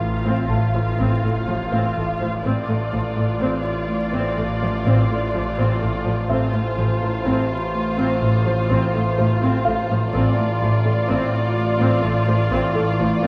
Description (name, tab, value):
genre	cinematic, suspense film score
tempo	62 BPM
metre	4/4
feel	straight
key	unclear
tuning	A4 = 440 Hz
part	muted symphonic violin section	melody	0.0-13.3 s	C5 to F5	-30 LUFS	equal	none
part	muted studio violin section	second line	0.0-13.3 s	F4	-30 LUFS	equal	none
part	marimba with soft mallets	riff	0.0-13.3 s	A2 to A3	-27 LUFS	equal	none
part	overtone-sweeping drone	drone	0.0-13.3 s	A1	-28 LUFS	equal	chorus, built-in reverb
part	sub drop	sound effects	0.0-2.4 s	none	-40 LUFS	equal	none
part	muted symphonic viola section	accompaniment	0.3-13.3 s	F3 to C4	-29 LUFS	equal	none
part	muted symphonic cello section	bass	0.3-13.3 s	A2	-29 LUFS	equal	none
part	muted symphonic double bass section	bass	0.5-13.1 s	A1	-30 LUFS	equal	none
part	warm concert grand piano	texture	0.5-13.3 s	E5 to A5	-30 LUFS	equal	none
room	wet scoring stage reverb, RT60 2.1 s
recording	worn, warbling old tape, cassette tape, vinyl crackle, warbly pitch drift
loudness	-20 LUFS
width	mono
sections	0.0-13.3 A section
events	impact 0.0-2.4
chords	0.0 F/A